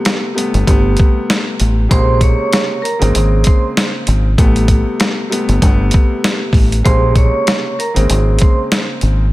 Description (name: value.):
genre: hip hop, boom-bap hip-hop.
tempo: 97 BPM.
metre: 4/4.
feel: swing 56% on 16ths.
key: Bb dorian.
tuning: A4 = 440 Hz.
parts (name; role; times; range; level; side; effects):
dark concert grand piano; accompaniment; 0.0-9.2 s; C3 to C4; -19 LUFS; left 1 dB; high-pass filter, low-pass filter.
boom bap sampler-style drum kit; drums; 0.1-9.2 s; hi-hat, kick drum, snare drum; -14 LUFS; equal; none.
deep dub fingered electric bass; bass; 0.5-9.3 s; G1 to Bb1; -13 LUFS; equal; none.
vibraphone with hard mallets; melody; 1.9-8.6 s; Bb4 to Db6; -19 LUFS; right 2 dB; high-pass filter, low-pass filter, tape echo.
room: studio reverb.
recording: none.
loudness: -11 LUFS.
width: side -18 dB against mid.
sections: 0.0-9.3 A section.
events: none.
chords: 0.0 Am9; 1.9 Bbm9; 4.4 Am9; 6.9 Bbm9.